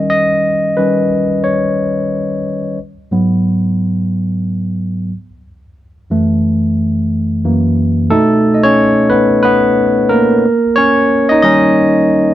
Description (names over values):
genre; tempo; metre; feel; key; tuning
R&B; 90 BPM; 4/4; swing 60% on 16ths; unclear; A4 = 439 Hz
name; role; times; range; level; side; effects
barky tine electric piano; solo; 0.0-12.3 s; F#2 to D#5; -11 LUFS; equal; overdrive
room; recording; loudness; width
light reverb; band playing live in one room; -11 LUFS; side -13 dB against mid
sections
0.0-8.1 A section; 8.1-12.3 B section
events
tine electric piano solo 0.0-8.1, 8.1-12.3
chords
0.0 D#7; 2.8 G#m7; 5.1 F#m7; 7.4 F#7; 8.1 B9; 10.4 D#7